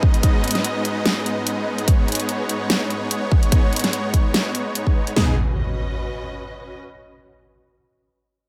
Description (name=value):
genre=heavy wobble dubstep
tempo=146 BPM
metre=4/4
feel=swing 55% on 16ths, half-time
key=G# minor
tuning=A4 = 442 Hz
part: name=supersaw chords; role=sustained chords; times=0.0-5.4 s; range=G#2 to D#5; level=-26 LUFS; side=equal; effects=sidechain pumping
part: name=dubstep drum kit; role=drums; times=0.0-5.3 s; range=kick drum, snare drum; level=-19 LUFS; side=equal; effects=none
part: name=warm symphonic string section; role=texture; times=0.0-6.8 s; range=G#3 to F#5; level=-35 LUFS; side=equal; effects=sidechain pumping
part: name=dubstep drum kit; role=drums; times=0.1-5.1 s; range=hi-hat, snare drum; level=-24 LUFS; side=equal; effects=none
part: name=impact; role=sound effects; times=5.2-6.8 s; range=none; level=-26 LUFS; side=equal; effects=none
room=light reverb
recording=none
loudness=-21 LUFS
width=mono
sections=0.0-5.2 A section; 5.2-6.8 B section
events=none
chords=0.0 G#m